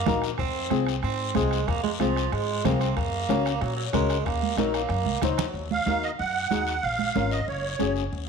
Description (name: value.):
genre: latin, cumbia.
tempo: 186 BPM.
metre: 4/4.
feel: straight.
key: unclear.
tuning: A4 = 442 Hz.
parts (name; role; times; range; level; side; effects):
raspy tenor saxophone; second line; 0.0-5.5 s; F3 to C4; -29 LUFS; right 7 dB; none.
flamenco guitar; accompaniment; 0.1-8.0 s; C4 to C5; -29 LUFS; left 9 dB; none.
upright bass; bass; 0.1-8.3 s; Gb1 to Bb2; -30 LUFS; left 1 dB; none.
bombo; percussion; 0.1-5.5 s; none; -33 LUFS; left 2 dB; none.
congas; percussion; 0.1-8.0 s; none; -30 LUFS; right 11 dB; none.
guiro; percussion; 0.1-8.3 s; none; -38 LUFS; left 13 dB; none.
musette accordion; melody; 5.7-7.9 s; Db5 to Gb5; -27 LUFS; right 5 dB; none.
room: wet echo chamber reverb, RT60 1.7 s, studio reverb.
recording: 1960s-style stereo with parts hard left and right.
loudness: -23 LUFS.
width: side -5 dB against mid.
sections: 0.0-5.5 A section; 5.5-8.3 B section.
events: drum fill 5.1-5.5.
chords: 0.4 Fm; 3.0 Gb; 4.3 Ebm; 6.8 Bbm; 7.5 Gbsus2.